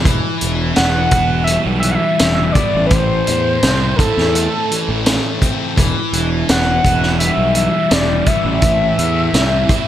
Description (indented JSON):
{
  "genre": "psychedelic rock",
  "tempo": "84 BPM",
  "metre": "4/4",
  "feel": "straight",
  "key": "E minor",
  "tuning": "A4 = 440 Hz",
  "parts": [
    { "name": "thick fuzz guitar", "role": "riff", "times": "0.0-9.9 s", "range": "A2 to E4", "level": "-19 LUFS", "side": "equal", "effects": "distortion, phaser" },
    { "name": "fuzz picked electric bass", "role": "bass", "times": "0.0-9.6 s", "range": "E1 to E2", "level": "-18 LUFS", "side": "equal", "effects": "overdrive" },
    { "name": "vintage drum kit", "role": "drums", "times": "0.1-9.9 s", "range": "hi-hat, kick drum, snare drum", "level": "-17 LUFS", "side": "equal", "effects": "none" },
    { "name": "overdriven synth lead", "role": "melody", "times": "0.8-9.9 s", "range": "A4 to F#5", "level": "-18 LUFS", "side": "left 1 dB", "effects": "digital delay" }
  ],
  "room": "light reverb, small room reverb",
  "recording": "none",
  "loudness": "-13 LUFS",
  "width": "side -11 dB against mid",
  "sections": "0.0-9.9 A section",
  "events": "none",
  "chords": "0.1 Em; 2.9 Am; 5.8 Em; 8.6 Am"
}